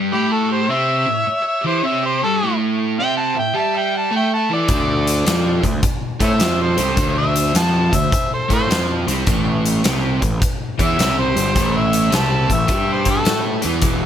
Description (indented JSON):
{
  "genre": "blues rock power trio and southern rock",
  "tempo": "105 BPM",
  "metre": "4/4",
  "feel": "swing 66% on 8ths",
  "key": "unclear",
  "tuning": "A4 = 441 Hz",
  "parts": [
    { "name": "crunchy overdriven guitar", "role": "riff", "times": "0.0-14.1 s", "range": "E2 to A4", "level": "-20 LUFS", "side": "right 1 dB", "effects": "none" },
    { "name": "overdriven harmonica", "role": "melody", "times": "0.1-13.4 s", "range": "G4 to A5", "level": "-21 LUFS", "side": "equal", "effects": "none" },
    { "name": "nasal lead guitar with a parked wah", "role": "second line", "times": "0.1-13.4 s", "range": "E4 to F#5", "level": "-28 LUFS", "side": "right 4 dB", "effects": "overdrive" },
    { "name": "fuzz picked electric bass", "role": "bass", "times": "4.7-14.1 s", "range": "E1 to A2", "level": "-20 LUFS", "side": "equal", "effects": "overdrive" },
    { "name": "huge arena drum kit", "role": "drums", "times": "4.7-14.0 s", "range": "hi-hat, kick drum, snare drum", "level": "-20 LUFS", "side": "left 1 dB", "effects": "none" }
  ],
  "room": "light reverb",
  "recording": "none",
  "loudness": "-15 LUFS",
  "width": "side -9 dB against mid",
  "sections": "0.0-14.1 A section",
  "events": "none",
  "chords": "0.0 A7; 4.7 D5; 9.3 A5"
}